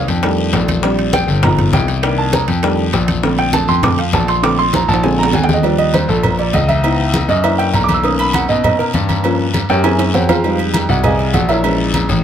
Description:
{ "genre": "Afro-Cuban jazz", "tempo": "200 BPM", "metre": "4/4", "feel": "straight", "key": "Bb major", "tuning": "A4 = 440 Hz", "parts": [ { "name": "dark upright piano", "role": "accompaniment", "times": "0.0-12.2 s", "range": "D3 to Fb6", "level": "-16 LUFS", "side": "right 2 dB", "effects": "none" }, { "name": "clear concert grand piano", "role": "bass", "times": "0.0-12.2 s", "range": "G1 to B2", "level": "-16 LUFS", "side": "left 1 dB", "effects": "none" }, { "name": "bongos and cowbell", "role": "percussion", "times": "0.1-12.2 s", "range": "none", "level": "-25 LUFS", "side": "left 2 dB", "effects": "none" }, { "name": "congas", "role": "percussion", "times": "0.1-12.2 s", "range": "none", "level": "-21 LUFS", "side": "left 1 dB", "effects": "none" }, { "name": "guiro", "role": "percussion", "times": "0.1-12.2 s", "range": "none", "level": "-27 LUFS", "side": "left 6 dB", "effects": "none" }, { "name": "timbales and agogo bells", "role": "percussion", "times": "0.1-12.1 s", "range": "none", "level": "-22 LUFS", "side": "right 6 dB", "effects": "none" } ], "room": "light reverb", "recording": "close, detailed microphones", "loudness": "-12 LUFS", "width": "side -9 dB against mid", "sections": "0.0-5.6 A section; 5.6-12.2 A section", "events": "upright piano solo 0.0-12.2; drum fill 4.7-5.6, 9.8-10.4", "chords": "0.2 F13; 0.8 Bb6; 1.4 G7alt; 2.0 Cm9; 2.6 F13; 3.2 Bbmaj9; 5.0 Bb9; 5.6 Ebmaj9; 6.8 Dbm9; 7.4 Gbaug7; 8.0 Bmaj9; 9.2 Gm7b5; 9.8 Gb7#11; 10.4 Fm9; 11.6 Bbm7b5" }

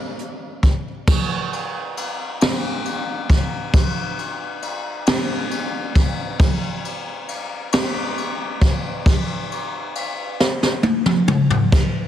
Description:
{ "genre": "pop", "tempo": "45 BPM (dotted quarters)", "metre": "6/8", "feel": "straight", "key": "none", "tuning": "none", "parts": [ { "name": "jazz brush drum kit", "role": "drums", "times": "0.2-11.9 s", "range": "crash cymbal, hi-hat, kick drum, ride cymbal, snare drum, splash cymbal, toms", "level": "-18 LUFS", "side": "equal", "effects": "none" } ], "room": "moderate plate reverb, RT60 3.1 s", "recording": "heavily compressed radio sound", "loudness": "-18 LUFS", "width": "side -11 dB against mid", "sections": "0.0-1.1 A section; 1.1-12.1 B section", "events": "drum fill 10.4-11.7", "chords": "none" }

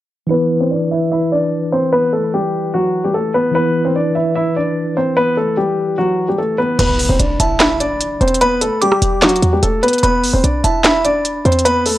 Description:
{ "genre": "hip hop, trap", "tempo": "148 BPM", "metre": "4/4", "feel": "half-time", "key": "E minor", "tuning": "A4 = 439 Hz", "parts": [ { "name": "dark baby grand piano", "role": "melody", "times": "0.3-12.0 s", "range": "F#3 to E5", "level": "-15 LUFS", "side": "equal", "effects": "low-pass filter" }, { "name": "mellow tine electric piano", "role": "accompaniment", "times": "0.3-6.8 s", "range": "E3 to B4", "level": "-20 LUFS", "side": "equal", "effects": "medium stereo tremolo, low-pass filter" }, { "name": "delicate synth tine bell", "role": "second line", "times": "6.8-12.0 s", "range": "A5 to D6", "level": "-22 LUFS", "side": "right 2 dB", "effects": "chorus, analog delay" }, { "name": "short 808-style bass", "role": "bass", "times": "6.8-12.0 s", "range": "D1 to E2", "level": "-18 LUFS", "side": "equal", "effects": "none" }, { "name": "trap drum kit", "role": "drums", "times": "6.8-12.0 s", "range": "crash cymbal, handclaps, hi-hat, rim click, snare drum", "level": "-16 LUFS", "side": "equal", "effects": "none" }, { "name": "impact", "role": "sound effects", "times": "6.8-8.4 s", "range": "none", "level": "-24 LUFS", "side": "right 1 dB", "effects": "none" } ], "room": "digital ambience", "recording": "dry, gritty hardware recording", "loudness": "-13 LUFS", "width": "side -14 dB against mid", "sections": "0.3-6.8 A section; 6.8-12.0 B section", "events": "filter sweep 0.3-6.8; impact 6.8-8.4", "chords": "0.3 Em; 6.8 E5" }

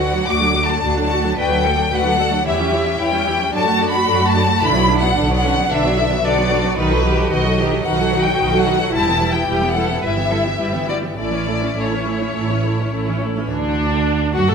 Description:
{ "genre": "quick classical-period movement for string orchestra", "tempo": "110 BPM", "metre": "4/4", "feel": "rubato", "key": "unclear", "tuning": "A4 = 444 Hz", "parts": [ { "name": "rich chamber violin section", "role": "melody", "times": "0.0-14.5 s", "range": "D4 to D6", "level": "-20 LUFS", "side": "left 3 dB", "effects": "none" }, { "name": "warm chamber violin section", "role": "second line", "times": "0.0-14.5 s", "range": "C#4 to F#5", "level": "-24 LUFS", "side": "left 4 dB", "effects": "none" }, { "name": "rich chamber viola section", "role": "accompaniment", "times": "0.0-14.5 s", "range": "D3 to A4", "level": "-22 LUFS", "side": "right 3 dB", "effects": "none" }, { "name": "clear studio cello section", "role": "bass", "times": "0.0-14.5 s", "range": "D3 to B4", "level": "-24 LUFS", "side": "right 2 dB", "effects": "none" }, { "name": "rich chamber double bass section", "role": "bass", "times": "0.0-14.5 s", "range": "E1 to A2", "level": "-22 LUFS", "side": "right 2 dB", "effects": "none" } ], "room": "moderate recital hall reverb, RT60 1.3 s", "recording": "minimal, uncompressed stereo recording", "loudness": "-15 LUFS", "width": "side -6 dB against mid", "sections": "0.0-13.5 A section; 13.5-14.5 B section", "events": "none", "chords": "0.3 D; 2.5 C#dim/E; 3.5 D/F#; 4.6 Bm; 6.8 B7; 8.9 Em; 10.0 Em/G; 11.2 A; 13.5 D" }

